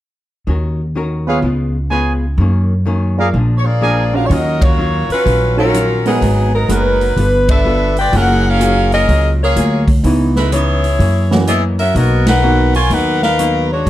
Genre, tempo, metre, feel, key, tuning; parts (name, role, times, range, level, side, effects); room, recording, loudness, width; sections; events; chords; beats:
jazz, big band swing; 126 BPM; 4/4; swing 66% on 8ths; Eb minor; A4 = 440 Hz
archtop guitar, miked and amplified; accompaniment; 0.5-13.9 s; Gb2 to Bb4; -22 LUFS; left 3 dB
upright bass; bass; 0.5-13.9 s; Gb1 to Gb2; -15 LUFS; equal
warm upright piano; accompaniment; 1.3-12.7 s; D#3 to F5; -20 LUFS; right 3 dB
clear trumpet section; stabs; 1.3-4.0 s; Ab4 to Ab5; -19 LUFS; right 2 dB
warm saxophone section; melody; 3.6-13.9 s; Gb3 to Ab5; -15 LUFS; left 1 dB
swinging big-band drum kit; drums; 4.3-13.9 s; hi-hat, kick drum, ride cymbal, snare drum; -18 LUFS; equal
moderate large studio reverb, RT60 0.9 s; dark, warm production; -12 LUFS; side -14 dB against mid
0.5-4.3 A section; 4.3-13.9 B section
band accent 4.5, 7.4, 12.2
0.5 Ebm7; 1.4 Db7; 2.4 Gb6; 3.3 Bb7; 4.3 Ebm9; 6.2 Abm9; 7.2 G9; 8.1 Gbmaj9; 10.0 Dbm9; 11.0 Gb7; 12.0 Bmaj7
| 0.48 0.96 1.44 1.92 | 2.39 2.87 3.35 3.83 | 4.30 4.78 5.26 5.74 | 6.22 6.70 7.17 7.65 | 8.13 8.61 9.09 9.57 | 10.04 10.52 11.00 11.48 | 11.96 12.44 12.91 13.39 | 13.87